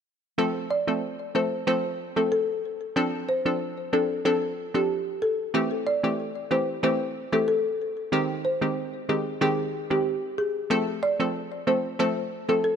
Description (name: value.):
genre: dancehall.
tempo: 93 BPM.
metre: 4/4.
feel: straight.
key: F major.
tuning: A4 = 438 Hz.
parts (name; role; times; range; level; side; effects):
hollow square pluck; accompaniment; 0.4-12.6 s; Eb3 to A4; -27 LUFS; right 1 dB; chorus.
folk marimba with medium mallets; melody; 0.7-12.8 s; G4 to D5; -26 LUFS; left 1 dB; ping-pong delay.
room: light reverb, small room ambience.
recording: none.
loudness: -24 LUFS.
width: side -7 dB against mid.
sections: 0.4-10.7 A section; 10.7-12.8 B section.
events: none.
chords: 0.4 F; 3.0 Dm7; 5.5 Am7; 8.1 Abmaj7; 10.7 F.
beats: | 0.38 1.03 1.67 2.32 | 2.96 3.61 4.25 4.90 | 5.54 6.19 6.83 7.48 | 8.12 8.77 9.41 10.06 | 10.71 11.35 11.99 12.64.